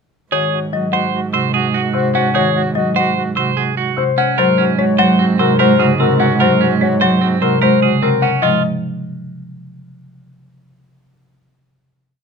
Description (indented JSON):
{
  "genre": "classical, minimalist pattern music",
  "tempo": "148 BPM",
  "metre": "5/4",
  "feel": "straight",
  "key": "Ab mixolydian",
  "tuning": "A4 = 441 Hz",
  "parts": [
    { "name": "warm concert grand piano", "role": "melody", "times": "0.3-8.6 s", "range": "Bb4 to Gb5", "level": "-17 LUFS", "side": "left 10 dB", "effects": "none" },
    { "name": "mellow soprano saxophone", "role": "second line", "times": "0.3-8.2 s", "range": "Gb4", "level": "-24 LUFS", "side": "right 4 dB", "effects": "none" },
    { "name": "marimba with hard mallets", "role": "accompaniment", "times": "0.3-8.6 s", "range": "C3 to Ab3", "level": "-18 LUFS", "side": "right 1 dB", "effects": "none" },
    { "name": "clean electric guitar", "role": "arpeggios", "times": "0.3-8.6 s", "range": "C4 to C5", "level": "-19 LUFS", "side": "right 11 dB", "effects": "none" },
    { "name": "rich cello", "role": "bass", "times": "0.3-8.6 s", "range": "Ab2", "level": "-21 LUFS", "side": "right 4 dB", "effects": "none" }
  ],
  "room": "light reverb",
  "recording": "close, detailed microphones",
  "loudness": "-13 LUFS",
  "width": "side -5 dB against mid",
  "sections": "0.3-8.4 A section; 8.4-10.5 final chord",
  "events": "none",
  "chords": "0.3 Ab7(no3); 4.4 Gbadd9/Ab; 8.4 Ab5",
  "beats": "| 0.32 0.73 1.14 1.54 1.95 | 2.35 2.76 3.16 3.57 3.97 | 4.38 4.78 5.19 5.59 6.00 | 6.41 6.81 7.22 7.62 8.03 | 8.43"
}